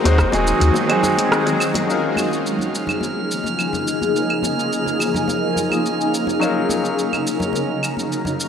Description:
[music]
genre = sunset chillout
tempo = 106 BPM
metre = 4/4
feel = straight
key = Db major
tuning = A4 = 439 Hz
[part]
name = nylon-string guitar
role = melody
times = 0.0-1.3 s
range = none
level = barely audible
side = none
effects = none
[part]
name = bright concert grand piano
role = accompaniment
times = 0.0-8.5 s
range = Gb3 to C5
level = -22 LUFS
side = moving between left 6 dB and right 2 dB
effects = auto-pan, tape echo
[part]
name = shimmering ambient pad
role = sustained chords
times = 0.0-8.5 s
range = Db3 to Bb4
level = -21 LUFS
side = equal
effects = chorus, built-in reverb, phaser
[part]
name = warm sub bass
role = bass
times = 0.0-0.7 s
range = Eb1 to Eb2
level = -16 LUFS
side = equal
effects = none
[part]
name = bongos and congas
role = percussion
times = 0.0-8.4 s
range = none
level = -29 LUFS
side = left 3 dB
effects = none
[part]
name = deep house drum kit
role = drums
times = 0.1-8.5 s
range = claves, hi-hat, rim click, shaker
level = -24 LUFS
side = right 1 dB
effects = studio reverb
[part]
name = drifting glass-harmonics texture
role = texture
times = 2.4-8.5 s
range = F6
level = -28 LUFS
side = right 4 dB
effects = chorus, built-in reverb
[sound]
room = moderate concert hall reverb, RT60 2.3 s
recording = dry, gritty hardware recording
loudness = -17 LUFS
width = side -7 dB against mid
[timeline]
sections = 0.0-1.9 A section; 1.9-8.5 B section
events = filter sweep on ambient pad 1.9-8.5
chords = 0.0 Ab7; 1.9 Db69; 6.4 Ebm7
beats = 0.19 0.75 1.32 | 1.88 2.45 3.02 3.58 | 4.15 4.71 5.28 5.85 | 6.41 6.98 7.54 8.11

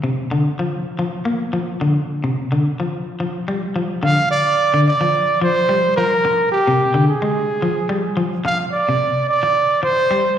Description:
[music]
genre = afrobeat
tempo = 108 BPM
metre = 4/4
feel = swing 55% on 16ths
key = Bb mixolydian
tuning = A4 = 441 Hz
[part]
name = electric guitar at the edge of break-up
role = arpeggios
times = 0.0-10.3 s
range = C3 to Bb3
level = -20 LUFS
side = left 1 dB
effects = slapback echo
[part]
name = breathy trumpet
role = melody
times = 4.0-10.4 s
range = G4 to F5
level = -16 LUFS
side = right 2 dB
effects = slapback echo
[sound]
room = moderate lush hall reverb, RT60 2.2 s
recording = live gig heard through the venue's PA, recital hall reverb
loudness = -16 LUFS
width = side -9 dB against mid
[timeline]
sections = 0.0-4.0 A section; 4.0-10.4 B section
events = none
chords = 0.0 Bb (rootless)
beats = 0.16 0.71 1.27 | 1.82 2.38 2.93 3.48 | 4.04 4.59 5.14 5.70 | 6.25 6.80 7.35 7.91 | 8.46 9.01 9.56 10.12

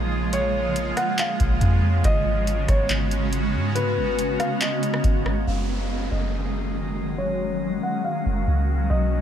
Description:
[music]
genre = hip hop, atmospheric cloud-rap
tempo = 140 BPM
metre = 4/4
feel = half-time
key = unclear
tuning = A4 = 439 Hz
[part]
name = granular cloud pad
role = sustained chords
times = 0.0-9.2 s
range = C#3 to F#4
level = -26 LUFS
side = equal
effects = built-in reverb, sidechain pumping, low-pass filter
[part]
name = soft 808-style bass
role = bass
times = 0.0-9.2 s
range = F#1 to G#2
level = -24 LUFS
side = equal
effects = none
[part]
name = drifting glass-harmonics texture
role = texture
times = 0.0-9.2 s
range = A#3 to A#5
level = -36 LUFS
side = right 3 dB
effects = chorus, built-in reverb
[part]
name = felt-muted upright piano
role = melody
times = 0.3-9.2 s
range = B4 to F#5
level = -28 LUFS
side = equal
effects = low-pass filter, tape echo
[part]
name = booming analog drum machine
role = drums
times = 0.3-5.4 s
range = handclaps, hi-hat, kick drum, rim click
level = -25 LUFS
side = equal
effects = overdrive
[part]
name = downlifter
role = sound effects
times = 5.5-8.9 s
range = none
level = -36 LUFS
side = right 2 dB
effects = none
[sound]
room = digital ambience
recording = none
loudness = -20 LUFS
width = side -9 dB against mid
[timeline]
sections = 0.0-5.5 A section; 5.5-9.2 B section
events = filter sweep 5.5-9.2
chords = 0.0 A#m7; 2.0 G#m11; 5.5 F#69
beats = | 0.33 0.76 1.19 1.61 | 2.04 2.47 2.90 3.33 | 3.76 4.18 4.61 5.04 | 5.47 5.90 6.33 6.76 | 7.18 7.61 8.04 8.47 | 8.90

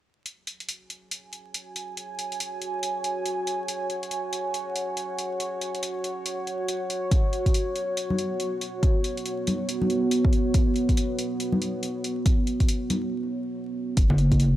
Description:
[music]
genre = deep dubstep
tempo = 140 BPM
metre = 4/4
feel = swing 62% on 16ths, half-time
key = unclear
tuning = A4 = 440 Hz
[part]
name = deep dark ambient pad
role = sustained chords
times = 1.7-14.6 s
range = B3 to G#5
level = -28 LUFS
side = right 1 dB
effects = chorus, built-in reverb
[part]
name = electronic hi-hat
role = drums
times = 0.3-14.5 s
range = none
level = -33 LUFS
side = equal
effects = none
[part]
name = electronic kick drum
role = drums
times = 7.1-14.4 s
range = none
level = -22 LUFS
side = equal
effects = none
[part]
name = congas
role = percussion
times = 8.1-14.2 s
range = none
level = -28 LUFS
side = left 1 dB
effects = none
[part]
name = deep soft wobble bass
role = bass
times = 14.0-14.6 s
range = F#1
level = -20 LUFS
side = equal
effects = chorus
[sound]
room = moderate echo chamber reverb, RT60 1.6 s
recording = vinyl crackle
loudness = -24 LUFS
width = side -14 dB against mid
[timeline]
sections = 0.3-14.0 A section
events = break 13.1-14.0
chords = 0.3 F#sus2; 7.1 B5; 14.0 F#sus2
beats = | 0.26 0.69 1.11 1.54 | 1.97 2.40 2.83 3.26 | 3.69 4.12 4.54 4.97 | 5.40 5.83 6.26 6.69 | 7.12 7.54 7.97 8.40 | 8.83 9.26 9.69 10.12 | 10.54 10.97 11.40 11.83 | 12.26 12.69 13.12 13.54 | 13.97 14.40

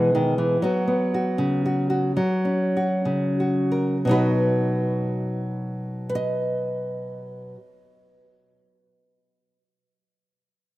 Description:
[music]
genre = folk, solo fingerstyle acoustic guitar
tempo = 29-44 BPM (dotted quarters)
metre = 6/8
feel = straight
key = B major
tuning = A4 = 445 Hz
[part]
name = nylon-string guitar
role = solo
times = 0.0-9.6 s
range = B2 to D#5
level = -21 LUFS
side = equal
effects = none
[sound]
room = light reverb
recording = rough home demo mix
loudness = -21 LUFS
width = side -17 dB against mid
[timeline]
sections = 0.0-4.0 A section; 4.0-8.1 B section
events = slowing down 0.0-4.0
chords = 0.0 E; 0.6 F#sus4; 2.2 F#; 4.0 B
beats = | 0.61 2.17 | 4.04 6.09

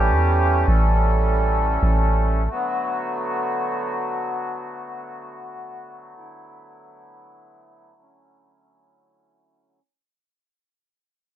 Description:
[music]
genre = hip hop, atmospheric cloud-rap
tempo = free time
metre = none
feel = none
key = unclear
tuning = A4 = 439 Hz
[part]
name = accordion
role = sustained chords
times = 0.0-9.8 s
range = D3 to A4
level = -24 LUFS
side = right 1 dB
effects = none
[part]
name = soft 808-style bass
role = bass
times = 0.0-2.5 s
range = A1 to E2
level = -19 LUFS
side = equal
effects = none
[sound]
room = little or no reverb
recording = rough home demo mix, low-pass filter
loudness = -19 LUFS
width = side -11 dB against mid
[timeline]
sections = 0.0-9.8 A section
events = fade-out 0.0-9.8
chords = 0.0 A7; 2.5 Bm7; 6.2 D69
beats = free time

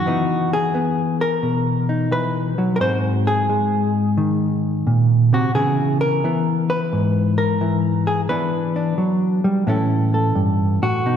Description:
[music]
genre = solo jazz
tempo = 87 BPM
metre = 4/4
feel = swing 68% on 8ths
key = unclear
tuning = A4 = 441 Hz
[part]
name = hollow-body jazz guitar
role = solo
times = 0.0-11.2 s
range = G2 to B#4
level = -17 LUFS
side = equal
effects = none
[sound]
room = wet concert hall reverb, RT60 2.2 s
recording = recorded in a church or concert hall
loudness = -17 LUFS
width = side -8 dB against mid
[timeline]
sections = 0.0-11.2 A section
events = none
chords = 0.1 Emaj9; 2.8 G#7; 5.5 C#m7; 8.3 Em7; 9.7 A7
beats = | 0.06 0.74 1.43 2.11 | 2.80 3.48 4.17 4.86 | 5.54 6.23 6.91 7.60 | 8.29 8.97 9.66 10.35 | 11.04

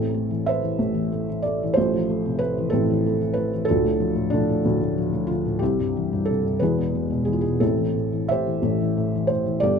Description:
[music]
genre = classical, lyrical solo piano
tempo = 61 BPM (dotted quarters)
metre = 6/8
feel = rubato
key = A minor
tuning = A4 = 440 Hz
[part]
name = felt-muted upright piano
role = solo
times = 0.0-9.8 s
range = D1 to E5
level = -20 LUFS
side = equal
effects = none
[sound]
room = light reverb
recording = close, detailed microphones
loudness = -20 LUFS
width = side -6 dB against mid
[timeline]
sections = 0.0-9.8 A section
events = none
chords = 0.0 Amadd9; 1.8 Fmaj7/A; 3.7 Dm; 5.6 C; 6.6 E; 7.6 Am7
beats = 0.80 | 1.77 2.73 | 3.68 4.64 | 5.61 6.60 | 7.61 8.62 | 9.62

